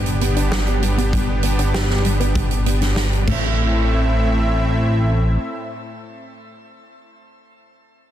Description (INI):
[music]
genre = synthwave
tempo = 98 BPM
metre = 4/4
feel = straight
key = A minor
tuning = A4 = 444 Hz
[part]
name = soft supersaw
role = sustained chords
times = 0.0-6.5 s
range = A2 to E5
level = -23 LUFS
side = equal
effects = sidechain pumping, shimmer reverb
[part]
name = analog pluck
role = arpeggios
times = 0.0-3.8 s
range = G3 to G4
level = -28 LUFS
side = right 2 dB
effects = chorus, ping-pong delay, shimmer reverb
[part]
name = chorused synth bass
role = bass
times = 0.0-5.4 s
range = G1 to A1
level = -19 LUFS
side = equal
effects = tube saturation
[part]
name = huge arena drum kit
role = drums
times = 0.1-3.4 s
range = crash cymbal, hi-hat, snare drum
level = -25 LUFS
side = right 2 dB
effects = none
[part]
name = kick drum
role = drums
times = 1.1-3.4 s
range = none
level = -25 LUFS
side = equal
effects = none
[sound]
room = light reverb, small room ambience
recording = dense, heavily limited modern master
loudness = -16 LUFS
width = side -11 dB against mid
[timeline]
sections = 0.0-3.6 A section; 3.6-6.0 B section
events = filter sweep on synth arpeggio sound 0.0-3.6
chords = 0.0 G; 3.3 Am